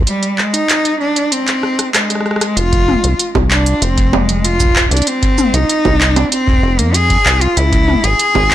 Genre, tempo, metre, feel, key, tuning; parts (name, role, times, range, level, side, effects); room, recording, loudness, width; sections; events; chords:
IDM; 96 BPM; 4/4; straight; F dorian; A4 = 440 Hz
deep acid bass; bass; 0.0-8.5 s; F1 to F2; -14 LUFS; equal
electronic kick drum; drums; 0.0-8.5 s; -16 LUFS; equal; small room ambience
rich cello; melody; 0.1-8.5 s; G3 to Ab4; -15 LUFS; equal; digital delay
organic electronic drum kit; drums; 0.1-8.5 s; bongos, cabasa, handclaps, hi-hat, rim click, toms; -16 LUFS; equal; small room ambience
light reverb, digital ambience; blown-out, overdriven recording, overdrive; -11 LUFS; side -12 dB against mid
0.0-2.6 A section; 2.6-8.5 B section
break 0.1-2.6; drum fill 1.6-2.6
0.0 Ab; 2.6 F5; 7.6 Db5